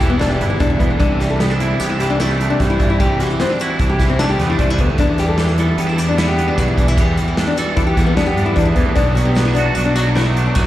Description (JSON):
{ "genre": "math rock and midwest emo", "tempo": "151 BPM", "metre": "5/4", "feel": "straight", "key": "E minor", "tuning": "A4 = 439 Hz", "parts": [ { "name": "twangy electric guitar", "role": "accompaniment", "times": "0.0-10.7 s", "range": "E2 to A4", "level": "-22 LUFS", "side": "right 5 dB", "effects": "ensemble chorus, slapback echo" }, { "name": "nylon-string guitar", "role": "arpeggios", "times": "0.0-10.7 s", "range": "A3 to A4", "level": "-20 LUFS", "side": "left 4 dB", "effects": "slapback echo" }, { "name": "raw garage guitar", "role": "riff", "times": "0.0-10.7 s", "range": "B2 to E4", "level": "-24 LUFS", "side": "right 1 dB", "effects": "overdrive, slapback echo" }, { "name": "fuzz fingered electric bass", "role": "bass", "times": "0.0-10.7 s", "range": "E1 to G2", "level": "-18 LUFS", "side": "equal", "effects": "overdrive" }, { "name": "loose indie drum kit", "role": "drums", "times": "0.0-10.7 s", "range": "hi-hat, kick drum, snare drum", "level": "-20 LUFS", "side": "equal", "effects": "none" } ], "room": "little or no reverb", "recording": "live gig heard through the venue's PA, recital hall reverb", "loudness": "-14 LUFS", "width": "side -14 dB against mid", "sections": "0.0-10.7 A section", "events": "none", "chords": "0.0 Em7; 1.0 C69; 5.0 Em7; 9.0 Bm7", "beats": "0.21 0.61 | 1.01 1.41 1.80 2.20 2.60 | 3.00 3.40 3.79 4.19 4.59 | 4.99 5.39 5.79 6.18 6.58 | 6.98 7.38 7.77 8.17 8.57 | 8.97 9.37 9.76 10.16 10.56" }